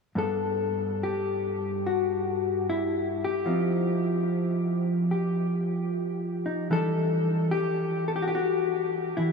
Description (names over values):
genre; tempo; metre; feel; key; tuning
solo jazz; 74 BPM; 4/4; swing 67% on 8ths, rubato; G major; A4 = 440 Hz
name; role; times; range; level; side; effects
hollow-body jazz guitar; solo; 0.2-9.3 s; G2 to A4; -25 LUFS; left 1 dB; none
room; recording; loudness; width
wet huge ambient reverb, RT60 8.9 s; dreamy mix soaked in reverb, studio reverb; -25 LUFS; side -4 dB against mid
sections
0.2-9.3 A section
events
none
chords
0.2 Gmaj7; 3.5 Fsus2; 6.7 Em11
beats
| 0.16 1.00 1.83 2.65 | 3.47 4.28 5.10 5.90 | 6.71 7.52 8.34 9.16